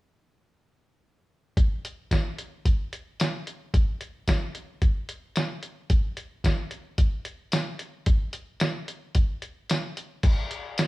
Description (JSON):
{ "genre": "blues", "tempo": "111 BPM", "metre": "4/4", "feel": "swing 54% on 16ths", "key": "none", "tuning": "none", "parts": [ { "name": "lo-fi sampler-style drum kit", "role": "drums", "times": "1.6-10.9 s", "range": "crash cymbal, hi-hat, kick drum, snare drum, tambourine", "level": "-23 LUFS", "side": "equal", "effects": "none" } ], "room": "light reverb", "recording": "band playing live in one room", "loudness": "-25 LUFS", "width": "side -20 dB against mid", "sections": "1.6-10.2 A section", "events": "break 10.0", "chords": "none", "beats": "| 1.57 2.11 2.65 3.19 | 3.73 4.28 4.82 5.36 | 5.90 6.44 6.99 7.53 | 8.07 8.61 9.15 9.69 | 10.23 10.77" }